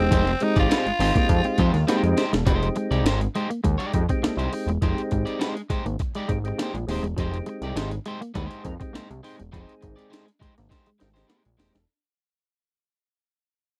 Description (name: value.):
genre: funk.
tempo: 102 BPM.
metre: 4/4.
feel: straight.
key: F dorian.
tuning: A4 = 440 Hz.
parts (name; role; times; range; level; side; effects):
breathy tenor saxophone; melody; 0.0-2.1 s; C4 to F4; -28 LUFS; equal; none.
semi-hollow electric guitar; riff; 0.0-11.8 s; F3 to C4; -32 LUFS; equal; none.
percussive tonewheel organ; stabs; 0.0-11.8 s; G3 to Bb4; -30 LUFS; equal; slow rotary speaker.
fat analog bass; bass; 0.0-11.9 s; Eb1 to F2; -27 LUFS; equal; none.
electric guitar at the edge of break-up; accompaniment; 0.1-11.8 s; Ab3 to D5; -33 LUFS; equal; none.
breakbeat sampler-style drum kit; drums; 0.1-11.9 s; hi-hat, kick drum, snare drum; -28 LUFS; equal; none.
room: little or no reverb.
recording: dry, close 1970s-style studio recording.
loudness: -24 LUFS.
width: mono.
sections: 0.0-2.5 A section; 2.5-11.9 B section.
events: drum fill 1.9-2.5, 10.7-11.9; fade-out 2.5-11.9.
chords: 0.0 Fm9.